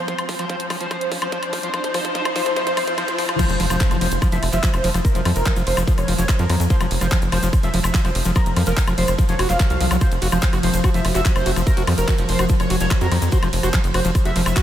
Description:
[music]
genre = psychedelic trance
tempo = 145 BPM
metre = 4/4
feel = straight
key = unclear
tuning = A4 = 440 Hz
[part]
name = evolving wavetable pad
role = sustained chords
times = 0.0-14.6 s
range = F3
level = -28 LUFS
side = equal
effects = chorus, built-in reverb, sidechain pumping
[part]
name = riser and impact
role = sound effects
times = 0.0-5.0 s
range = none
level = -31 LUFS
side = equal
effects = none
[part]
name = wide unison lead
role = melody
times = 0.1-14.6 s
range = Bb4 to F5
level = -25 LUFS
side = equal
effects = phaser, sidechain pumping, ping-pong delay
[part]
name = screaming distorted acid line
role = riff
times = 0.1-14.6 s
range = F3 to Gb4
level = -26 LUFS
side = left 1 dB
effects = distortion, chorus, auto-pan, sidechain pumping, ping-pong delay
[part]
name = electronic kick drum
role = drums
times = 0.1-14.6 s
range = none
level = -18 LUFS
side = equal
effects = high-pass filter on kick
[part]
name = garage drum kit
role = drums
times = 0.1-14.6 s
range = crash cymbal, handclaps, hi-hat, ride cymbal, woodblock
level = -26 LUFS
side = left 1 dB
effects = none
[part]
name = egg shaker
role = percussion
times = 3.4-14.6 s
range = none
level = -35 LUFS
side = left 3 dB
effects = none
[part]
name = tight sequencer bass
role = bass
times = 3.5-14.5 s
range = F1 to F2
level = -21 LUFS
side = equal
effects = none
[sound]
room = moderate huge ambient reverb, RT60 7.4 s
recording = dreamy mix soaked in reverb, high-pass filter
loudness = -17 LUFS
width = side -11 dB against mid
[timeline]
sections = 0.0-3.4 A section; 3.4-14.6 B section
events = build-up 0.0-3.4; drum fill 0.0-3.4; riser 0.0-3.4; filter sweep on ambient pad 0.0-3.4; drop 3.4-14.6; impact 3.4-5.0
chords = 0.0 F5

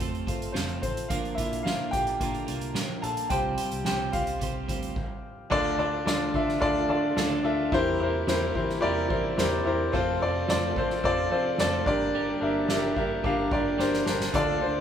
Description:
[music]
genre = piano-driven pop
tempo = 109 BPM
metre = 4/4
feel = straight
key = D minor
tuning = A4 = 440 Hz
[part]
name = clear upright piano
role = accompaniment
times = 0.0-14.8 s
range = G2 to A5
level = -26 LUFS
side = left 1 dB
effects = none
[part]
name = warm analog pad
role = sustained chords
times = 0.0-14.8 s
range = C3 to G4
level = -40 LUFS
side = equal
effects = none
[part]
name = twelve-string electric guitar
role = riff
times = 0.0-14.8 s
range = Bb2 to C5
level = -35 LUFS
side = right 6 dB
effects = none
[part]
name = vintage muted picked electric bass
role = bass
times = 0.0-14.8 s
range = F1 to F3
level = -36 LUFS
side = equal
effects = none
[part]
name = soft-mallet drum kit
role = drums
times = 0.0-14.7 s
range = crash cymbal, hi-hat, kick drum, ride cymbal, snare drum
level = -32 LUFS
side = right 1 dB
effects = none
[sound]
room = moderate large studio reverb, RT60 1.4 s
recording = band playing live in one room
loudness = -24 LUFS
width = side -9 dB against mid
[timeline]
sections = 0.0-5.5 A section; 5.5-14.8 B section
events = upright piano solo 0.0-5.5; stop 5.0-5.5; drum fill 13.8-14.3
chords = 0.0 F; 1.1 Bb; 3.3 Csus4; 5.5 Dm; 7.7 C7/E; 9.9 F; 11.9 Gm

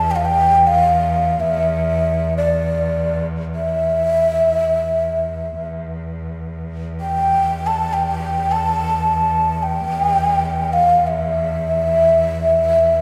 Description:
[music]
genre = Arabic maqam ensemble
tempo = free time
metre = none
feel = none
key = E maqam kurd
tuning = A4 = 439 Hz
[part]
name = breathy mellow ney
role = melody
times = 0.0-13.0 s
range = D5 to A5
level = -18 LUFS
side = equal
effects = none
[part]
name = rich cello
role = drone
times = 0.0-13.0 s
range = E2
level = -26 LUFS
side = equal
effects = none
[sound]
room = wet recital hall reverb, RT60 1.6 s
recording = heard from further back in the room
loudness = -18 LUFS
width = mono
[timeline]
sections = 0.0-13.0 A section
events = none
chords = none

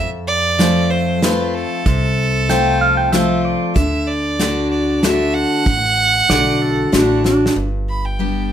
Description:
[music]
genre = honky-tonk and classic country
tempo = 95 BPM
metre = 3/4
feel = straight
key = unclear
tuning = A4 = 439 Hz
[part]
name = clear fiddle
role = melody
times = 0.0-8.5 s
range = A4 to B5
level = -19 LUFS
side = right 3 dB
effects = none
[part]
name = picked steel-string acoustic guitar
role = accompaniment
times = 0.0-8.5 s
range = F2 to G4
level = -18 LUFS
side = left 2 dB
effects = none
[part]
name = upright bass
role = bass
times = 0.0-8.5 s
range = G1 to F2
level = -22 LUFS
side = right 1 dB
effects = none
[part]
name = unplugged drum kit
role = drums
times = 0.6-7.6 s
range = hi-hat, kick drum, snare drum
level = -19 LUFS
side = right 1 dB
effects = none
[part]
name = pedal steel guitar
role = second line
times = 2.5-7.6 s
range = D4 to G5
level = -19 LUFS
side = right 3 dB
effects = none
[sound]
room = moderate studio reverb, RT60 0.7 s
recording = none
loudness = -14 LUFS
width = side -10 dB against mid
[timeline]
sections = 0.0-7.6 A section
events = drum fill 7.2-7.6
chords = 0.0 F; 3.8 D; 7.6 G

